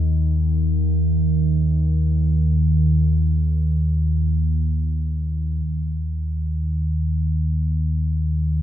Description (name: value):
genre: dark ambient drone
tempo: free time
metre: none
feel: none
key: unclear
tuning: A4 = 440 Hz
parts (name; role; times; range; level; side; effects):
- deep rumbling drone; solo; 0.0-8.6 s; Eb2 to Eb3; -18 LUFS; equal; built-in reverb
room: moderate huge ambient reverb, RT60 8.7 s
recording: cassette tape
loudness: -18 LUFS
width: side -11 dB against mid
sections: 0.0-5.6 A section; 5.6-8.6 B section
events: none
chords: none